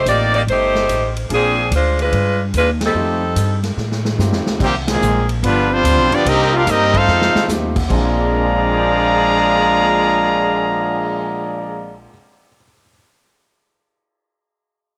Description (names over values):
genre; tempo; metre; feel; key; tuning
jazz, big band swing; 145 BPM; 4/4; swing 66% on 8ths; Bb mixolydian; A4 = 440 Hz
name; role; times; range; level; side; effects
warm saxophone section; melody; 0.0-3.6 s; F3 to D5; -19 LUFS; equal; none
upright bass; bass; 0.0-12.1 s; G1 to A2; -23 LUFS; equal; none
clear grand piano; accompaniment; 0.1-12.9 s; Bb2 to Bb6; -29 LUFS; equal; none
swinging big-band drum kit; drums; 0.1-11.1 s; crash cymbal, cymbal swell, hi-hat, kick drum, ride cymbal, snare drum; -26 LUFS; equal; none
clear trumpet section; melody; 4.6-12.0 s; G3 to Bb5; -18 LUFS; equal; none
brilliant trombone section; second line; 4.6-12.0 s; Bb2 to F4; -23 LUFS; equal; none
room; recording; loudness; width
light reverb, small room ambience; none; -16 LUFS; mono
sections
0.0-4.6 A section; 4.6-7.9 B section; 7.9-11.2 C section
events
band accent 2.7, 4.8; drum fill 3.8-4.6, 7.1-7.5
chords
0.0 F9; 1.3 Bb9; 2.1 G5; 2.9 F9; 4.6 Cm7; 5.4 G7; 6.2 Cm7; 7.1 F7; 7.9 Bb13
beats
0.06 0.47 0.89 | 1.30 1.71 2.12 2.54 | 2.95 3.36 3.77 4.19 | 4.60 5.01 5.42 5.84 | 6.25 6.66 7.07 7.49 | 7.90 8.31 8.72 9.14 | 9.55 9.96 10.37 10.79